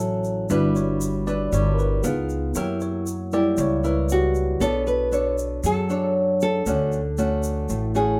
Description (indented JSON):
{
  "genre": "bossa nova",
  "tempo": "117 BPM",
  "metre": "4/4",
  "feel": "straight",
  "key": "unclear",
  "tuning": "A4 = 440 Hz",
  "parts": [
    { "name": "nylon-string guitar", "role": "accompaniment", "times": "0.0-8.2 s", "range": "A2 to C#5", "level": "-27 LUFS", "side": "equal", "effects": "none" },
    { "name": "tine electric piano", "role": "accompaniment", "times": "0.0-8.2 s", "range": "F#3 to D5", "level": "-30 LUFS", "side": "equal", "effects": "none" },
    { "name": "upright bass", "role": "bass", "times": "0.0-8.2 s", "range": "G1 to F#2", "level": "-28 LUFS", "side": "equal", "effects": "none" },
    { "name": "egg shaker", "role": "percussion", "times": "0.2-8.2 s", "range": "none", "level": "-40 LUFS", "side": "equal", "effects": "none" },
    { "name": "nylon-string guitar", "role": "melody", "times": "4.1-8.2 s", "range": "F#4 to B4", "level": "-27 LUFS", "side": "equal", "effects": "none" }
  ],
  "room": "light reverb",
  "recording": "none",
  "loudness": "-23 LUFS",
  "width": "mono",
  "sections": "0.0-4.6 A section; 4.6-8.2 B section",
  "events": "tine electric piano solo 0.0-4.6",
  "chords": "0.5 Em7/G; 2.0 C#13; 2.6 F#7b9; 4.6 Bm9; 6.7 Dmaj7"
}